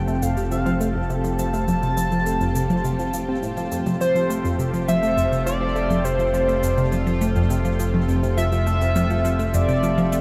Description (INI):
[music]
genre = ambient, sequencer-driven space music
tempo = 103 BPM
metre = 4/4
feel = straight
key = F major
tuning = A4 = 440 Hz
[part]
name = pulse-width lead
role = melody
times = 0.0-10.2 s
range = C5 to A5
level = -27 LUFS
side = equal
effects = chorus, tape echo
[part]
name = string machine, full ensemble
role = sustained chords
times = 0.0-10.2 s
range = A3 to E5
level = -30 LUFS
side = equal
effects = ensemble chorus
[part]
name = fat analog bass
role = bass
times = 0.0-10.2 s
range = F1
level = -28 LUFS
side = equal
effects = none
[part]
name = bubbling stepped-filter texture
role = texture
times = 0.0-10.2 s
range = F4 to A5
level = -36 LUFS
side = equal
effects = chorus, built-in reverb
[part]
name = analog pluck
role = riff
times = 0.1-10.2 s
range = F2 to C4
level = -28 LUFS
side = equal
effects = chorus, phaser, tape echo
[part]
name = electronic shaker and toms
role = percussion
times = 0.1-10.2 s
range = none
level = -31 LUFS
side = equal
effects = tape echo
[sound]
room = wet huge ambient reverb, RT60 8.9 s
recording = none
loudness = -21 LUFS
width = mono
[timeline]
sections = 0.0-10.2 A section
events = filter sweep on synth arpeggio sound 0.0-10.2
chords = 0.0 F